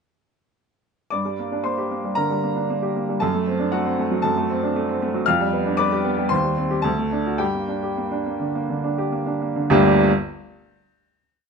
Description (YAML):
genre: classical, virtuoso piano study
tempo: 102-118 BPM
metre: 4/4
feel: rubato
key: G minor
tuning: A4 = 440 Hz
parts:
  - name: clear baby grand piano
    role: solo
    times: 1.1-10.1 s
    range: G1 to F6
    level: -19 LUFS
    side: equal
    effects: none
room: light reverb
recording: nothing above 10.3 kHz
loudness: -19 LUFS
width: side -5 dB against mid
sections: 1.1-9.7 A section; 9.7-11.5 final chord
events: none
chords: 1.1 Gm; 3.2 D7/F#; 5.3 G7/F; 6.3 Cm/Eb; 6.8 D; 7.4 Gm